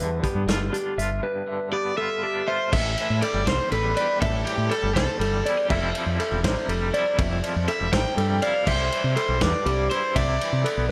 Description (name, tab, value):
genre	math rock and midwest emo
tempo	81 BPM (dotted quarters)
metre	6/8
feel	straight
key	unclear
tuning	A4 = 440 Hz
part	twangy electric guitar	accompaniment	0.0-10.9 s	E2 to G4	-33 LUFS	equal	tremolo
part	mellow electric guitar	arpeggios	0.0-10.9 s	G4 to E5	-30 LUFS	equal	dub echo
part	growling fingered electric bass	bass	0.0-10.9 s	E1 to C3	-28 LUFS	equal	overdrive
part	loose indie drum kit	drums	0.2-10.8 s	crash cymbal, hi-hat, kick drum, ride cymbal, snare drum	-30 LUFS	equal	none
part	overdriven semi-hollow guitar	melody	1.7-10.9 s	G4 to G5	-30 LUFS	equal	dub echo
room	moderate spring reverb, RT60 2.1 s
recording	echo-heavy mix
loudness	-24 LUFS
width	mono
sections	0.0-2.7 A section; 2.7-10.9 B section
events	none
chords	0.0 G7; 2.7 Am7; 5.7 Fmaj9; 8.7 Cmaj9